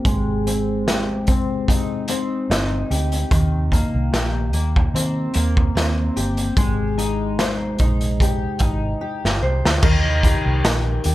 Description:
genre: indie pop, bedroom pop.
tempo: 74 BPM.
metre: 4/4.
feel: swing 55% on 16ths.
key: Eb major.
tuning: A4 = 440 Hz.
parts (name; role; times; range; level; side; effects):
fingerpicked steel-string acoustic guitar; accompaniment; 0.0-11.1 s; Eb3 to C5; -23 LUFS; left 2 dB; analog chorus, vibrato effect, low-pass filter.
vintage muted fingered electric bass; bass; 0.1-11.1 s; G1 to Eb3; -22 LUFS; equal; none.
raw garage drum kit; drums; 0.1-11.1 s; crash cymbal, hi-hat, kick drum, snare drum; -20 LUFS; equal; none.
room: light reverb.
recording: none.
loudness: -17 LUFS.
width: side -15 dB against mid.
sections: 0.0-9.8 A section; 9.8-11.1 B section.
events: filter sweep on steel-string acoustic guitar 0.0-9.8; drum fill 9.0-9.8.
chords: 0.0 Abmaj7; 3.3 Eb6; 6.6 Abmaj7; 9.8 Eb.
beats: | 0.04 0.86 1.68 2.50 | 3.31 4.13 4.95 5.76 | 6.58 7.39 8.21 9.02 | 9.83 10.65.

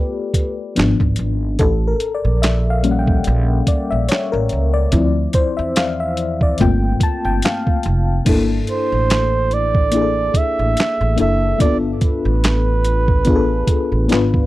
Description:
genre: R&B, neo-soul.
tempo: 72 BPM.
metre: 4/4.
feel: swing 54% on 16ths.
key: G dorian.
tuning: A4 = 440 Hz.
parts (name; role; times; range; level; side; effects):
FM electric piano with tremolo; accompaniment; 0.0-14.5 s; E#3 to A5; -20 LUFS; left 4 dB; none.
boom bap sampler-style drum kit; drums; 0.3-14.5 s; crash cymbal, handclaps, hi-hat, kick drum, snare drum; -18 LUFS; right 1 dB; none.
upright bass; bass; 0.8-14.5 s; F1 to E2; -18 LUFS; right 1 dB; none.
mellow flugelhorn; melody; 8.7-14.5 s; B4 to E5; -20 LUFS; right 4 dB; tape echo.
room: little or no reverb.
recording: dry, close 1970s-style studio recording.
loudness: -15 LUFS.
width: side -16 dB against mid.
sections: 0.0-8.3 A section; 8.3-14.5 B section.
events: FM electric piano solo 0.0-8.3.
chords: 0.0 G9; 0.8 G#dim7; 1.6 A7b9; 4.9 Dm9; 6.6 Gm11; 8.3 Gm69 (rootless); 11.6 G9.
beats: 0.76 | 1.59 2.43 3.26 4.09 | 4.93 5.76 6.59 7.43 | 8.26 9.09 9.93 10.76 | 11.59 12.43 13.26 14.09.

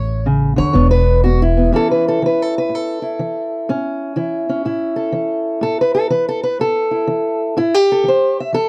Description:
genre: acoustic country blues, solo or duo.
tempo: 123 BPM.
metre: 4/4.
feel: swing 64% on 8ths.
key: A mixolydian.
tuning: A4 = 441 Hz.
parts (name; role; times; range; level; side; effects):
fingerpicked steel-string acoustic guitar; melody; 0.0-8.7 s; A2 to E5; -18 LUFS; equal; none.
upright bass; bass; 0.0-1.7 s; E1 to E2; -18 LUFS; equal; none.
room: small room ambience.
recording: dry, close 1970s-style studio recording.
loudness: -17 LUFS.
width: mono.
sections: 0.0-1.7 A section; 1.7-8.7 B section.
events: steel-string acoustic guitar solo 0.0-1.7.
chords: 0.0 A; 0.8 E5; 1.7 A.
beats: 0.27 0.76 1.24 | 1.73 2.21 2.70 3.18 | 3.67 4.16 4.64 5.13 | 5.62 6.11 6.59 7.08 | 7.57 8.05 8.54.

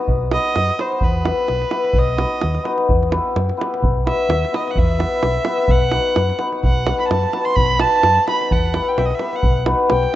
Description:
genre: balkan folk, Balkan wedding band.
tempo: 128 BPM.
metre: 2/4.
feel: swing 54% on 16ths.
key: unclear.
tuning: A4 = 441 Hz.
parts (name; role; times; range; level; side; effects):
hammered dulcimer; accompaniment; 0.0-10.2 s; B3 to B4; -20 LUFS; left 4 dB; none.
hollow-body short-scale fingered electric bass; bass; 0.1-10.1 s; B1 to F#2; -21 LUFS; equal; none.
davul; percussion; 0.1-10.1 s; none; -22 LUFS; right 1 dB; none.
rich violin; melody; 0.3-10.2 s; B4 to C6; -21 LUFS; right 3 dB; none.
room: moderate plate reverb, RT60 3.0 s.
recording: rough home demo mix, nothing above 7.8 kHz.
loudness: -15 LUFS.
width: side -13 dB against mid.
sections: 0.1-10.2 A section.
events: violin solo 0.1-10.2.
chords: 0.1 B; 1.0 Em; 2.0 B; 2.9 Em; 3.8 B; 4.8 Em; 5.7 B; 8.5 Em; 9.4 B.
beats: | 0.09 0.56 | 1.02 1.49 | 1.96 2.43 | 2.90 3.37 | 3.83 4.30 | 4.77 5.24 | 5.70 6.17 | 6.64 7.11 | 7.57 8.04 | 8.51 8.97 | 9.44 9.91.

